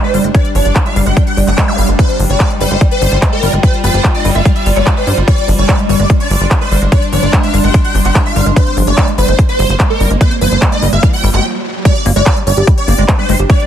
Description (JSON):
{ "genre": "psychedelic trance", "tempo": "146 BPM", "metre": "4/4", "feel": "straight", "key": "G phrygian", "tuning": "A4 = 440 Hz", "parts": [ { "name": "swarming rave lead", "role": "melody", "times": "0.0-13.6 s", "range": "Bb4 to G5", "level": "-17 LUFS", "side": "equal", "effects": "chorus, phaser, sidechain pumping, ping-pong delay" }, { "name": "evolving wavetable pad", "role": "sustained chords", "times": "0.0-13.7 s", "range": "G3 to F4", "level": "-21 LUFS", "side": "left 2 dB", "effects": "chorus, built-in reverb, sidechain pumping" }, { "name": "liquid acid bass", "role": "riff", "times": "0.0-13.6 s", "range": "F3 to G4", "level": "-19 LUFS", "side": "moving between left 5 dB and right 5 dB", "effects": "phaser, auto-pan, vintage 12-bit sampler grit, sidechain pumping, ping-pong delay" }, { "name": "warbly tape-like pad", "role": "texture", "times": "0.0-13.7 s", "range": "G4 to C6", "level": "-27 LUFS", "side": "left 1 dB", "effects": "chorus, built-in reverb, sidechain pumping" }, { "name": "plucky analog bass", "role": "bass", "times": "0.1-13.4 s", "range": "G1 to G2", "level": "-13 LUFS", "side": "equal", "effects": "none" }, { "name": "big-room dance drum kit", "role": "drums", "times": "0.1-13.7 s", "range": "handclaps, hi-hat", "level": "-21 LUFS", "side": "equal", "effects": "overdrive" }, { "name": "electronic kick drum", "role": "drums", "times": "0.3-13.6 s", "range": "none", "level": "-11 LUFS", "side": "equal", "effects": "overdrive" }, { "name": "zap and riser", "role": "sound effects", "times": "1.7-1.8, 10.3-11.9 s", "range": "none", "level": "-26 LUFS", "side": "equal", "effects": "none" } ], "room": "little or no reverb", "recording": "none", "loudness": "-9 LUFS", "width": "side -10 dB against mid", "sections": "0.0-11.9 A section; 11.9-13.7 B section", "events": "stop 11.4-11.9; drop 11.9-13.7", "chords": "0.0 G5" }